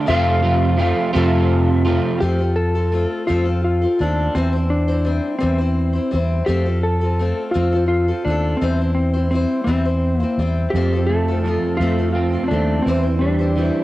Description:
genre	folk rock and heartland rock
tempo	56 BPM (dotted quarters)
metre	6/8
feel	straight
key	F major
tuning	A4 = 440 Hz
part	clean lap steel guitar	melody	0.0-13.8 s	C4 to F5	-22 LUFS	left 1 dB	cassette tape, analog delay
part	picked acoustic archtop guitar	accompaniment	0.0-13.8 s	E3 to C5	-25 LUFS	left 3 dB	cassette tape
part	electric guitar at the edge of break-up	riff	0.0-2.2, 10.7-13.8 s	F2 to F4	-20 LUFS	right 3 dB	ensemble chorus, cassette tape
part	fingered electric bass	bass	0.1-13.7 s	Eb2 to F2	-19 LUFS	equal	none
room	light reverb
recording	home recording on cassette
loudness	-16 LUFS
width	side -16 dB against mid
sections	0.0-2.2 A section; 2.2-13.8 B section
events	none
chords	0.1 F; 4.3 C/E; 6.5 F; 8.6 C/E; 10.7 F; 12.9 C/E

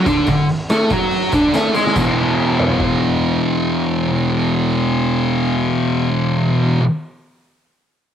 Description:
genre	garage rock duo or trio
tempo	142 BPM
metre	4/4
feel	straight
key	E mixolydian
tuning	A4 = 442 Hz
part	thick fuzz guitar	riff	0.0-6.8 s	E2 to A4	-15 LUFS	equal	distortion, cassette tape
part	oversized low-tuned drum kit	drums	0.1-2.9 s	crash cymbal, hi-hat, kick drum, snare drum, toms	-22 LUFS	equal	cassette tape
part	tambourine	percussion	0.1-2.2 s	none	-39 LUFS	right 3 dB	none
room	light reverb, small room ambience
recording	home recording on cassette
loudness	-15 LUFS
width	side -9 dB against mid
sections	0.0-2.0 A section; 2.0-5.3 B section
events	drum fill 1.7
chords	0.0 D5; 2.0 E5

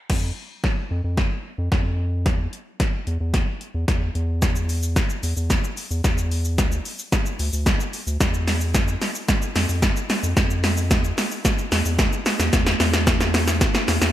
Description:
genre	dance-pop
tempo	111 BPM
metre	4/4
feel	straight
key	unclear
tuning	A4 = 442 Hz
part	round analog bass	bass	0.1-14.1 s	D2 to F2	-23 LUFS	equal	sidechain pumping
part	punchy analog drum machine	drums	0.1-14.1 s	crash cymbal, hi-hat, kick drum, shaker, snare drum	-20 LUFS	equal	gated reverb
room	light reverb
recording	bright 1980s-style digital production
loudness	-20 LUFS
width	side -13 dB against mid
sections	0.1-14.1 A section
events	build-up 0.1-14.1; drum fill 0.1-14.1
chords	none

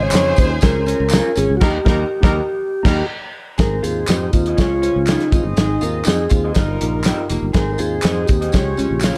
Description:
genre	uptempo 1960s-style soul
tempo	121 BPM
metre	4/4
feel	straight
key	Ab major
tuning	A4 = 435 Hz
part	mellow tonewheel organ	melody	0.0-9.2 s	Eb4 to Db5	-23 LUFS	equal	slow rotary speaker
part	clear horn section	second line	0.0-9.0 s	G3 to Eb5	-31 LUFS	equal	none
part	rich studio string section	second line	0.0-3.0 s	Ab4 to Bb5	-33 LUFS	equal	none
part	mellow tine electric piano	accompaniment	0.0-9.2 s	G2 to Bb5	-28 LUFS	equal	none
part	electric guitar through a small old amp	riff	0.0-9.2 s	Bb3 to Ab4	-31 LUFS	equal	none
part	fingered electric bass	bass	0.0-9.1 s	F1 to F2	-24 LUFS	equal	none
part	electric guitar through a small old amp	stabs	0.1-9.2 s	F4 to Eb5	-32 LUFS	equal	spring reverb
part	cloth-damped thuddy drum kit	drums	0.1-9.2 s	crash cymbal, hi-hat, kick drum, snare drum	-19 LUFS	equal	none
part	handclaps and tambourine	percussion	0.1-9.1 s	none	-32 LUFS	equal	none
room	light reverb, small room ambience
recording	none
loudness	-17 LUFS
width	mono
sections	0.0-3.6 A section; 3.6-9.2 B section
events	band accent 1.6-3.6; tine electric piano fill 2.6-3.6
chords	0.0 Db; 1.6 Eb; 3.6 Ab; 4.6 Db; 5.3 Ab; 6.6 Ebadd9/G; 7.6 Ab; 8.5 Db

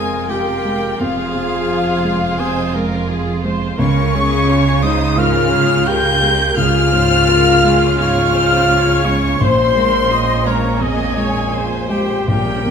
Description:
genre	cinematic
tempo	85 BPM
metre	4/4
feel	rubato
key	unclear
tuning	A4 = 440 Hz
part	clear violin	melody	0.0-12.7 s	F5 to G6	-24 LUFS	left 6 dB	none
part	rich studio violin section	melody	0.0-12.7 s	Db4 to F4	-28 LUFS	right 1 dB	none
part	clear symphonic violin section	second line	0.0-12.7 s	F5 to G6	-25 LUFS	left 1 dB	none
part	mellow hollow large flute ensemble	second line	0.0-12.7 s	F5 to G6	-24 LUFS	left 1 dB	none
part	mellow oboe	second line	0.0-12.7 s	F4 to G5	-22 LUFS	right 2 dB	none
part	clear symphonic viola section	accompaniment	0.0-12.7 s	Ab4 to Eb5	-24 LUFS	right 2 dB	none
part	felt-muted upright piano	accompaniment	0.0-12.7 s	Bb1 to F4	-21 LUFS	equal	none
part	mellow French horn section	sustained chords	0.0-12.7 s	F3 to C5	-19 LUFS	left 6 dB	none
part	rich symphonic cello section	bass	0.0-12.7 s	F2 to Db3	-23 LUFS	right 5 dB	none
part	rich symphonic double bass section	bass	0.0-12.7 s	F1 to Db2	-22 LUFS	right 4 dB	none
room	wet recital hall reverb, RT60 1.6 s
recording	none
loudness	-13 LUFS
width	side -7 dB against mid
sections	0.0-12.7 A section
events	none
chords	0.0 Fm; 3.8 Db; 9.4 Bbm7

